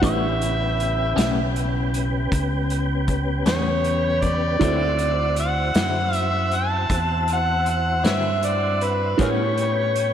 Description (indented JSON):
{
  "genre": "slow blues",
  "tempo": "52 BPM (dotted quarters)",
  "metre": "12/8",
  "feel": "straight",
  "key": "A mixolydian",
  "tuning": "A4 = 441 Hz",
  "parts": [
    { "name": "overdriven harmonica", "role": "melody", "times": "0.0-10.1 s", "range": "G#4 to A5", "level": "-23 LUFS", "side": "equal", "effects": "none" },
    { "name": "clean electric guitar", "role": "accompaniment", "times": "0.0-9.4 s", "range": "A2 to E4", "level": "-31 LUFS", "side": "left 4 dB", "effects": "none" },
    { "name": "dark upright piano", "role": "accompaniment", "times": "0.0-10.1 s", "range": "C4 to C#6", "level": "-28 LUFS", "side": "right 5 dB", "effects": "none" },
    { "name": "tonewheel organ", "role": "sustained chords", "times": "0.0-10.1 s", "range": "C#3 to G4", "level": "-27 LUFS", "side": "equal", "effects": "slow rotary speaker, chorus vibrato" },
    { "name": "fingered electric bass", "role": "bass", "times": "0.0-10.1 s", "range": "A1 to A2", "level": "-24 LUFS", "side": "equal", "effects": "none" },
    { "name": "vintage drum kit", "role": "drums", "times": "0.0-10.1 s", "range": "hi-hat, kick drum, snare drum", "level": "-26 LUFS", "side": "equal", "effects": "none" }
  ],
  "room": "wet lush hall reverb, RT60 3.2 s",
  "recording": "dreamy mix soaked in reverb",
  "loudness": "-19 LUFS",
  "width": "side -9 dB against mid",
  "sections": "0.0-10.1 A section",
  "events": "none",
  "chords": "0.0 A9; 4.6 D9; 9.2 A9"
}